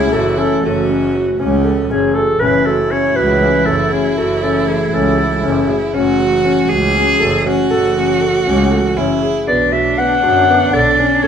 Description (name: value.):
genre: contemporary instrumental, chamber music in an uneven meter.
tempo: 238 BPM (eighths).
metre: 7/8.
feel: straight.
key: F# minor.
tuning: A4 = 440 Hz.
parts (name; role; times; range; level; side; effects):
breathy clarinet; melody; 0.0-5.7, 9.5-11.3 s; F#4 to F#5; -15 LUFS; left 1 dB; none.
rich cello; second line; 0.0-11.3 s; C#4 to G#4; -18 LUFS; right 3 dB; none.
ethereal airy pad; sustained chords; 0.1-11.3 s; D3 to A4; -23 LUFS; right 1 dB; ensemble chorus, built-in reverb.
felt-muted upright piano; arpeggios; 0.0-11.3 s; B3 to A4; -18 LUFS; left 3 dB; none.
bright double bass; bass; 0.0-11.3 s; F#1 to F#2; -20 LUFS; right 2 dB; none.
room: wet studio reverb, RT60 0.8 s.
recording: heard from further back in the room.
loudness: -12 LUFS.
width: side -8 dB against mid.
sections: 0.0-2.4 A section; 2.4-11.3 B section.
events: none.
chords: 0.0 F#m7; 9.5 Bm7.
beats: 0.13 0.38 | 0.64 0.89 1.14 1.39 1.65 1.90 2.15 | 2.40 2.66 2.91 3.16 3.41 3.67 3.92 | 4.17 4.42 4.67 4.93 5.18 5.43 5.68 | 5.94 6.19 6.44 6.69 6.95 7.20 7.45 | 7.70 7.95 8.21 8.46 8.71 8.96 9.21 | 9.47 9.72 9.97 10.22 10.48 10.73 10.98 | 11.23.